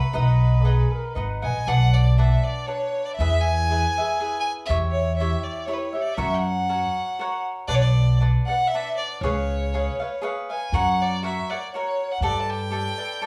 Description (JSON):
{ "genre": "mexican folk, mariachi", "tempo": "120 BPM", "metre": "3/4", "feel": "rubato", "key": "B minor", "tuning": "A4 = 440 Hz", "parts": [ { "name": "rich violin", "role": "melody", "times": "0.0-13.3 s", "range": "B4 to A5", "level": "-28 LUFS", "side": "equal", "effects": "slapback echo" }, { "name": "cavaquinho", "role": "accompaniment", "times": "0.0-13.3 s", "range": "D4 to F#5", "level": "-32 LUFS", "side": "equal", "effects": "none" }, { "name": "mellow trumpet", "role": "second line", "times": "0.1-1.6 s", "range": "G#4 to D#5", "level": "-35 LUFS", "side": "equal", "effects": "none" }, { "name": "upright bass", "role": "bass", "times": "0.2-12.9 s", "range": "G#1 to G2", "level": "-24 LUFS", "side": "equal", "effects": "none" } ], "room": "wet small room ambience, RT60 0.5 s", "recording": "heard from further back in the room, small room ambience", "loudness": "-23 LUFS", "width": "mono", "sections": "0.0-1.7 A section; 1.7-13.3 B section", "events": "none", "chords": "0.1 B; 1.7 Bm; 3.2 E; 4.7 C#dim/E; 6.2 F#; 7.7 Bm; 9.2 C#7; 10.7 F#; 12.2 Gadd9", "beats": "| 0.15 0.65 1.16 | 1.67 2.18 2.68 | 3.19 3.69 4.19 | 4.69 5.19 5.68 | 6.18 6.68 7.18 | 7.69 8.20 8.71 | 9.21 9.71 10.22 | 10.72 11.21 11.71 | 12.20 12.70 13.21" }